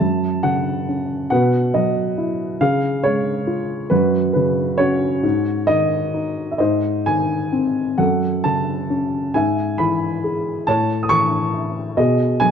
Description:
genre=classical, lyrical solo piano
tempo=45 BPM (dotted quarters)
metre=6/8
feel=rubato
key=unclear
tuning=A4 = 440 Hz
part: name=dark upright piano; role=solo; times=0.0-12.5 s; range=F#2 to D#6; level=-17 LUFS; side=equal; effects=none
room=moderate recital hall reverb, RT60 1.7 s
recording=dark, warm production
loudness=-17 LUFS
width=side -7 dB against mid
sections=0.0-12.5 A section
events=none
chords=0.0 F#5; 1.3 Bsus4; 2.6 C#; 3.9 F#5; 5.2 G#5; 6.6 G#; 8.0 F#m; 9.4 E/G#; 10.7 A; 12.0 B6

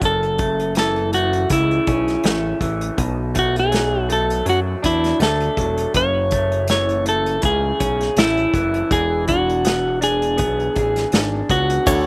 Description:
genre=indie pop, bedroom pop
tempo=81 BPM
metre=4/4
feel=swing 55% on 16ths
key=F# minor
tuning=A4 = 440 Hz
part: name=electric guitar at the edge of break-up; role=melody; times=0.0-12.1 s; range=E4 to C#5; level=-21 LUFS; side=equal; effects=none
part: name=electric guitar through a small old amp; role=accompaniment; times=0.0-12.1 s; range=F#2 to G#4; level=-28 LUFS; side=equal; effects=warbly pitch drift, slapback echo
part: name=fat analog bass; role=bass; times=0.0-12.1 s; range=E1 to F#2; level=-26 LUFS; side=equal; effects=none
part: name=unplugged drum kit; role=drums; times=0.0-12.1 s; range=hi-hat, kick drum, ride cymbal, snare drum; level=-25 LUFS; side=equal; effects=none
part: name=clean electric guitar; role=second line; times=11.9-12.1 s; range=A4 to C#5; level=-23 LUFS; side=equal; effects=none
part: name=egg shaker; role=percussion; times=11.9-12.1 s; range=none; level=-33 LUFS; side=equal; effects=none
room=little or no reverb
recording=recorded outdoors, with no room sound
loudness=-19 LUFS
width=mono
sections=0.0-11.9 A section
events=none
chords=0.0 F#m7; 3.0 Bm7; 5.9 F#m7; 8.9 E7

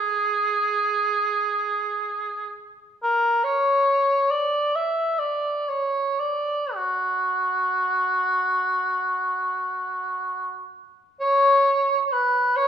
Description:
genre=classical, free, expressive piece for unaccompanied cor anglais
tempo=free time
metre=none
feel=none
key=unclear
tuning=A4 = 440 Hz
part: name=mellow cor anglais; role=solo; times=0.0-12.7 s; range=F#4 to E5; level=-20 LUFS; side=equal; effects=none
room=moderate recital hall reverb, RT60 1.6 s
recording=minimal, uncompressed stereo recording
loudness=-20 LUFS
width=side -8 dB against mid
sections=0.0-11.2 A section; 11.2-12.7 B section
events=none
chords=none

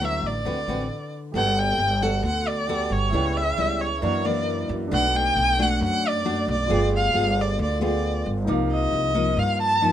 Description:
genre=bossa nova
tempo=135 BPM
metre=4/4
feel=straight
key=unclear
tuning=A4 = 444 Hz
part: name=clear erhu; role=melody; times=0.0-9.9 s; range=C#5 to A5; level=-24 LUFS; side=equal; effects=none
part: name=nylon-string guitar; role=accompaniment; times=0.0-9.9 s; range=F#2 to B4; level=-27 LUFS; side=left 2 dB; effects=none
part: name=upright bass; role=bass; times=0.0-9.9 s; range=G1 to G2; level=-26 LUFS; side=right 1 dB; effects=none
part: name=warm concert grand piano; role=accompaniment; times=1.3-9.9 s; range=D4 to G6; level=-32 LUFS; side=right 4 dB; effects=none
room=light reverb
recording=minimal, uncompressed stereo recording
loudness=-21 LUFS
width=side -10 dB against mid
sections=0.0-1.3 A section; 1.3-9.9 B section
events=stop 0.9-1.3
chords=0.5 D6; 1.3 Gmaj9; 3.1 C#m7b5; 4.0 F#7b13; 4.9 Bm7; 6.7 G7b9; 8.5 Cm11

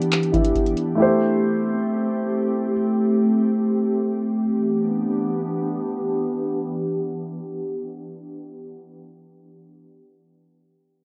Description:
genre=hip hop, trap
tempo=free time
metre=none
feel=none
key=E minor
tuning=A4 = 439 Hz
part: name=dark baby grand piano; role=accompaniment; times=0.0-4.4 s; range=E3 to E5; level=-25 LUFS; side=equal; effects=none
part: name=glassy FM pad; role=sustained chords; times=0.0-8.6 s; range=E3 to G4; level=-24 LUFS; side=equal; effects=ensemble chorus, built-in reverb
part: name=booming analog drum machine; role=drums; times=0.0-0.9 s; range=handclaps, hi-hat, kick drum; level=-25 LUFS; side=equal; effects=overdrive
room=wet small room reverb, RT60 0.6 s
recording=rough home demo mix, low-pass filter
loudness=-22 LUFS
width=mono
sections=0.0-4.4 A section; 4.4-7.9 B section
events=filter sweep 0.0-4.4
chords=0.0 Em7; 1.0 Am7; 4.4 Em7

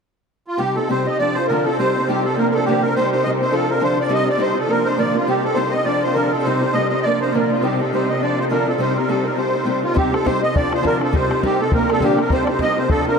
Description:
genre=celtic folk, Celtic reel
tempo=205 BPM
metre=4/4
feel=swing 58% on 8ths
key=C dorian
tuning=A4 = 437 Hz
part: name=musette accordion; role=melody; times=0.5-13.2 s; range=F4 to Eb5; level=-19 LUFS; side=right 1 dB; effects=diffuse ambient delay
part: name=fingerpicked steel-string acoustic guitar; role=accompaniment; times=0.6-13.2 s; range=Bb2 to Bb4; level=-20 LUFS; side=equal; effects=wide subtle chorus
part: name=rich cello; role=drone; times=0.6-13.2 s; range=C3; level=-27 LUFS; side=right 1 dB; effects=stereo widening
part: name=bodhran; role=percussion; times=10.0-13.0 s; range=none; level=-22 LUFS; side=left 2 dB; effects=none
room=wet huge ambient reverb, RT60 7.9 s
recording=dreamy mix soaked in reverb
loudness=-16 LUFS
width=side -5 dB against mid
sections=0.6-10.0 A section; 10.0-13.2 A section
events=none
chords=0.0 N.C.; 0.6 Cm; 1.2 Dm; 1.8 Cm; 2.4 Bb; 2.9 Cm; 3.5 Dm; 4.1 Cm; 4.7 Bb; 5.3 Cm; 5.9 Dm; 6.5 Cm; 7.0 Bb; 7.6 Cm; 8.2 Dm; 8.8 Cm; 10.5 Dm; 11.1 Cm; 11.7 Bb; 12.3 Cm

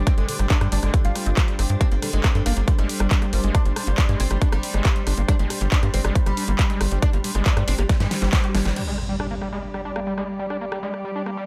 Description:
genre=psychedelic trance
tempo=138 BPM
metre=4/4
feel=straight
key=unclear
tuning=A4 = 440 Hz
part: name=evolving wavetable pad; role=sustained chords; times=0.0-11.5 s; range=G3 to G4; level=-39 LUFS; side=equal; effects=chorus, built-in reverb, sidechain pumping
part: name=screaming distorted acid line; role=riff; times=0.0-11.4 s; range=G3 to G4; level=-34 LUFS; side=equal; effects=distortion, chorus, sidechain pumping, digital delay
part: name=tight sequencer bass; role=bass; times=0.0-8.7 s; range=G1 to G2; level=-24 LUFS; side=equal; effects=none
part: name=warbly tape-like pad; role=texture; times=0.0-11.5 s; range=G3 to D6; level=-35 LUFS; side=equal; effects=chorus, built-in reverb, sidechain pumping
part: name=oud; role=melody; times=0.1-8.7 s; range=D3 to F4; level=-32 LUFS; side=equal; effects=phaser, sidechain pumping, digital delay
part: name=big-room dance drum kit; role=drums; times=0.1-11.4 s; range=crash cymbal, handclaps, hi-hat, rim click, snare drum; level=-31 LUFS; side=equal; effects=none
part: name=electronic kick drum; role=drums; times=0.1-8.4 s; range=none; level=-22 LUFS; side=equal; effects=none
part: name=resonant blip pluck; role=second line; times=1.3-3.8, 6.6-8.8 s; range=Bb3 to C4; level=-43 LUFS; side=equal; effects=none
part: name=impact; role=sound effects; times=8.8-10.5 s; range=none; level=-34 LUFS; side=equal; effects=none
room=light reverb, digital ambience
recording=none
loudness=-22 LUFS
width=mono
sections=0.0-8.8 A section; 8.8-11.5 B section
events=drop 0.0-8.8; drum fill 7.9-8.8; impact 8.8-10.5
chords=0.0 G5

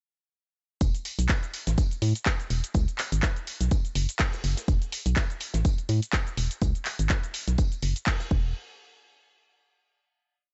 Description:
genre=piano house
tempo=124 BPM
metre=4/4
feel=swing 56% on 16ths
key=E major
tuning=A4 = 436 Hz
part: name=organ-like FM bass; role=bass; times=0.8-8.5 s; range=E1 to A2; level=-28 LUFS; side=equal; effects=sidechain pumping
part: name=electronic kick drum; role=drums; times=0.8-8.4 s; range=none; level=-28 LUFS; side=equal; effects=none
part: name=house drum kit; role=drums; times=0.8-8.3 s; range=handclaps, hi-hat, shaker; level=-34 LUFS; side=equal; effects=none
part: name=modern studio drum kit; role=drums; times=0.8-8.3 s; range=hi-hat, snare drum, tambourine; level=-44 LUFS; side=equal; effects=high-pass filter on hats, high-pass filter on snare, high-pass filter on perc, high-pass filter on room
room=little or no reverb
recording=nothing above 7.9 kHz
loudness=-27 LUFS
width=mono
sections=0.8-8.6 drop; 8.6-10.5 final hit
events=drop 0.8-8.6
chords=none

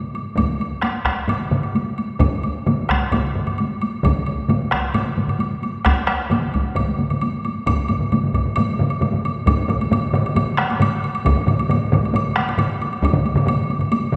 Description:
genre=japanese traditional, taiko drum ensemble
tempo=133 BPM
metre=4/4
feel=straight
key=none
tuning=none
part: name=taiko ensemble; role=percussion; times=0.1-14.0 s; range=none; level=-26 LUFS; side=equal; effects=none
part: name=woodblock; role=percussion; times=0.1-14.2 s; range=none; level=-30 LUFS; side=equal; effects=none
part: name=solo taiko drums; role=percussion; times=0.4-14.2 s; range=none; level=-26 LUFS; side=equal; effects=none
part: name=taiko ensemble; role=percussion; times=0.4-14.2 s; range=none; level=-26 LUFS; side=equal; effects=none
part: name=taiko ensemble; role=percussion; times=0.4-13.1 s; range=none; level=-26 LUFS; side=equal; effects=none
room=wet scoring stage reverb, RT60 2.0 s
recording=recorded in a church or concert hall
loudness=-20 LUFS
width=mono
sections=0.0-9.5 A section; 9.5-14.2 B section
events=speeding up 0.0-14.2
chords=none

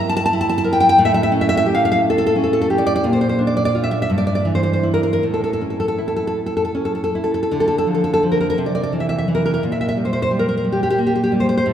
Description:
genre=romantic piece for solo classical guitar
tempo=51-62 BPM (dotted quarters)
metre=6/8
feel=rubato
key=unclear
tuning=A4 = 440 Hz
part: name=nylon-string guitar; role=solo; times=0.0-11.7 s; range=G2 to A5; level=-16 LUFS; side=equal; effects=none
room=wet church reverb, RT60 3.3 s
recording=recorded in a church or concert hall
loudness=-16 LUFS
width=side -9 dB against mid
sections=0.0-7.5 A section; 7.5-11.7 B section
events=none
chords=0.0 Edim/G; 1.0 A7; 3.0 Bb; 4.1 Gm6; 5.2 A; 7.5 Dm; 8.6 C9; 9.6 Gm/Bb

